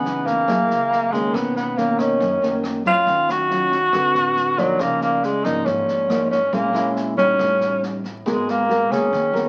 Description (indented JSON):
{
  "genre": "bossa nova",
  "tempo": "139 BPM",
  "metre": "4/4",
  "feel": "straight",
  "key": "unclear",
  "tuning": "A4 = 440 Hz",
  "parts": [
    { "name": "breathy tenor saxophone", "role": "melody", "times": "0.0-9.5 s", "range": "F#3 to Gb4", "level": "-21 LUFS", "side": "equal", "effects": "none" },
    { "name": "clear baby grand piano", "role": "accompaniment", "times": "0.0-9.5 s", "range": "Fb4 to Bb5", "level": "-33 LUFS", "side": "equal", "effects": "none" },
    { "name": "nylon-string guitar", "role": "accompaniment", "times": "0.0-9.5 s", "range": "F#2 to B4", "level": "-26 LUFS", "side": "equal", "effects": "none" },
    { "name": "upright bass", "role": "bass", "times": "0.0-9.5 s", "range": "Ab1 to Gb2", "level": "-39 LUFS", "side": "equal", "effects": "none" },
    { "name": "vintage drum kit", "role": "drums", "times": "0.1-9.4 s", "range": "kick drum, rim click, snare drum", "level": "-36 LUFS", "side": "equal", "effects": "none" }
  ],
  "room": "moderate studio reverb, RT60 0.9 s",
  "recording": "very old 78 rpm record, vinyl crackle",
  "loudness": "-20 LUFS",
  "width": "mono",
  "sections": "0.0-9.5 A section",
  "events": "none",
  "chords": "0.5 Gb9; 1.3 Bmaj9; 3.1 Ebm9; 3.9 D6; 4.8 Db69; 6.5 Bbm7b5; 7.4 A7#11; 8.3 Abm9"
}